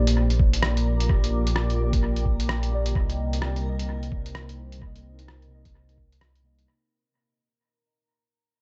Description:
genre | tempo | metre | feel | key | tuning
future garage | 129 BPM | 4/4 | swing 60% on 16ths | unclear | A4 = 439 Hz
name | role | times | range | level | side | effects
muted felt-like synth keys | accompaniment | 0.0-6.7 s | C3 to Eb5 | -35 LUFS | equal | chorus, phaser, sidechain pumping, low-pass filter, tape echo
deep dark ambient pad | sustained chords | 0.0-6.7 s | Bb3 to D6 | -37 LUFS | equal | chorus, built-in reverb, sidechain pumping
dark detuned saw bass | bass | 0.0-6.7 s | Bb1 to C2 | -28 LUFS | equal | sidechain pumping
backwards swelling texture | texture | 0.4-6.7 s | Bb4 | -44 LUFS | equal | built-in reverb
lo-fi sampler-style drum kit | drums | 0.1-6.7 s | hi-hat, rim click | -34 LUFS | equal | dub echo
electronic kick drum | drums | 0.4-6.1 s | none | -26 LUFS | equal | none
room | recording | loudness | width
light reverb | echo-heavy mix, nothing above 8.0 kHz | -24 LUFS | mono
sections
0.0-6.7 A section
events
fade-out 0.0-6.7; filter sweep on synth keys 0.0-6.7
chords
0.0 Bb6; 3.0 Cm7

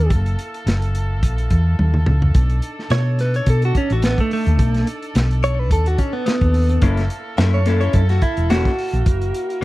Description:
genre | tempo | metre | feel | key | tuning
straight-eighth soul blues | 107 BPM | 4/4 | swing 54% on 16ths | unclear | A4 = 443 Hz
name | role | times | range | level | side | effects
direct-recorded clean electric guitar | melody | 0.0-9.6 s | A3 to E5 | -22 LUFS | right 1 dB | phaser
warm horn section | sustained chords | 0.0-9.6 s | A#3 to A#4 | -32 LUFS | right 1 dB | none
hollow-body short-scale fingered electric bass | bass | 0.0-9.6 s | E1 to B2 | -17 LUFS | equal | none
crunchy breakbeat drum kit | drums | 0.1-9.6 s | hi-hat, kick drum, snare drum, toms | -20 LUFS | equal | none
electric guitar through a small old amp | stabs | 6.8-9.6 s | A#3 to A4 | -24 LUFS | left 4 dB | spring reverb
room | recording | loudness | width
little or no reverb | dry, close 1970s-style studio recording | -16 LUFS | side -18 dB against mid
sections
0.0-9.6 A section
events
clean electric guitar solo 0.0-9.6; drum fill 1.8-2.3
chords
0.1 F#7#9; 2.3 B7#9; 6.8 F#7#9

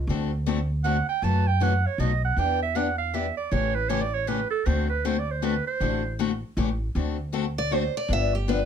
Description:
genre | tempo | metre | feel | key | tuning
acoustic string swing (jazz manouche) | 157 BPM | 3/4 | swing 61% on 8ths | D mixolydian | A4 = 440 Hz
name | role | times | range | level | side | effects
upright bass | bass | 0.0-8.7 s | G1 to F#2 | -26 LUFS | equal | none
picked steel-string acoustic guitar | accompaniment | 0.1-8.6 s | B2 to A4 | -28 LUFS | left 7 dB | none
warm clarinet | second line | 0.8-6.2 s | A4 to A5 | -27 LUFS | right 8 dB | none
picked steel-string acoustic guitar | melody | 7.6-8.7 s | G4 to E5 | -27 LUFS | right 2 dB | none
room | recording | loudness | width
moderate club reverb, RT60 0.5 s | none | -23 LUFS | side -8 dB against mid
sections
0.0-7.0 A section; 7.0-8.7 A section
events
clarinet solo 0.0-7.0; steel-string acoustic guitar solo 7.0-8.7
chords
0.1 D7; 1.2 F#m7; 2.0 B7; 2.4 Em7; 3.5 A7; 4.7 D7; 6.6 A7; 7.0 D7; 8.1 G7

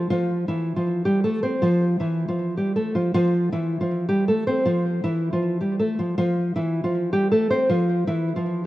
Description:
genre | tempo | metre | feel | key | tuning
hip hop | 158 BPM | 4/4 | half-time | unclear | A4 = 440 Hz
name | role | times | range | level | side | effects
nylon-string guitar | solo | 0.0-8.6 s | E3 to C5 | -20 LUFS | equal | low-pass filter, ping-pong delay
room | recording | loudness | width
light reverb, studio reverb | rough home demo mix | -20 LUFS | side -16 dB against mid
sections
0.0-8.7 A section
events
none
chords
0.0 Fmaj9/E

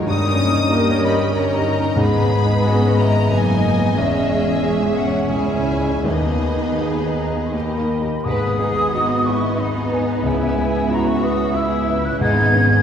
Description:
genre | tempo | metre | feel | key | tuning
classical, romantic movement for piano and orchestra | 78-95 BPM | 3/4 | rubato | G# minor | A4 = 439 Hz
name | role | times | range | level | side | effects
clear grand piano | melody | 0.0-12.8 s | C#2 to E5 | -20 LUFS | left 2 dB | none
rich symphonic violin section | second line | 0.0-12.8 s | G#3 to E5 | -29 LUFS | left 2 dB | none
warm symphonic viola section | accompaniment | 0.0-12.8 s | G3 to G4 | -24 LUFS | right 1 dB | none
dark symphonic cello section | bass | 0.0-12.8 s | C#2 to B4 | -25 LUFS | right 2 dB | none
warm symphonic double bass section | bass | 0.0-12.8 s | E1 to D#2 | -25 LUFS | right 2 dB | none
warm symphonic violin section | melody | 0.1-12.8 s | D#5 to D#6 | -27 LUFS | left 3 dB | none
timpani | percussion | 6.0-7.1 s | D#3 | -29 LUFS | right 2 dB | none
concert flute | second line | 7.2-12.8 s | G#5 to G#6 | -23 LUFS | left 1 dB | none
room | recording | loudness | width
wet concert hall reverb, RT60 2.0 s | heard from further back in the room | -16 LUFS | side -8 dB against mid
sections
0.0-8.3 A section; 8.3-12.8 B section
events
none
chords
0.1 D#7/G; 2.0 G#m; 4.0 C#m/E; 6.0 G#m/D#; 7.5 D#; 8.3 G#m; 10.2 C#m7; 12.2 G#m

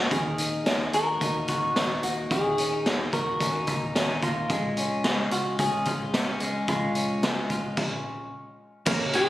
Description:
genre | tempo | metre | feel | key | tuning
jangly indie pop | 110 BPM | 4/4 | straight | unclear | A4 = 438 Hz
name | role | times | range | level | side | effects
semi-hollow electric guitar | melody | 0.0-9.3 s | F4 to Bb4 | -30 LUFS | equal | lush chorus, analog delay
electric guitar through a small old amp | arpeggios | 0.0-9.3 s | Eb3 to Gb4 | -29 LUFS | left 2 dB | spring reverb
vintage muted fingered electric bass | bass | 0.0-9.3 s | Gb1 to Eb2 | -38 LUFS | right 1 dB | none
raw garage drum kit | drums | 0.1-9.3 s | crash cymbal, hi-hat, kick drum, ride cymbal, snare drum | -27 LUFS | equal | none
chorused retro synth keys | accompaniment | 8.9-9.3 s | Bb3 to Bb4 | -30 LUFS | right 1 dB | none
picked old ladder-braced acoustic guitar | accompaniment | 8.9-9.3 s | Gb2 to Gb4 | -31 LUFS | right 6 dB | none
tambourine | percussion | 8.9-9.3 s | none | -41 LUFS | left 4 dB | none
glockenspiel with soft plastic mallets | second line | 9.2-9.3 s | Ab6 | -29 LUFS | equal | none
room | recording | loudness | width
light reverb | recorded on a phone in the room, studio reverb, compression | -24 LUFS | side -15 dB against mid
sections
0.0-8.9 A section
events
stop 7.8-8.9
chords
0.1 Ebm; 4.5 Db

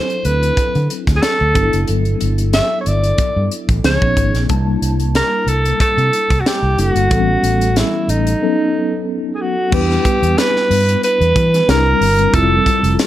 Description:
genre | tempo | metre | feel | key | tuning
polished 1980s jazz-funk pop | 92 BPM | 4/4 | swing 54% on 16ths | G major | A4 = 441 Hz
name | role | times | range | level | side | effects
breathy alto saxophone | melody | 0.0-13.0 s | Eb4 to E5 | -17 LUFS | right 1 dB | none
mellow tine electric piano | accompaniment | 0.0-13.1 s | E3 to A5 | -20 LUFS | left 2 dB | medium stereo tremolo, analog chorus
tight funk drum kit | drums | 0.1-13.1 s | crash cymbal, hi-hat, kick drum, snare drum | -19 LUFS | equal | none
fingered electric bass | bass | 0.3-12.9 s | F1 to E3 | -17 LUFS | equal | none
room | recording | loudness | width
studio reverb | none | -13 LUFS | side -13 dB against mid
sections
0.0-9.7 A section; 9.7-13.1 B section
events
break 8.4-9.7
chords
0.0 D7; 1.6 Gmaj13; 3.8 C#9; 4.5 C13; 7.1 A9; 8.4 B7; 9.7 Em7; 11.7 C7; 12.3 Fmaj7

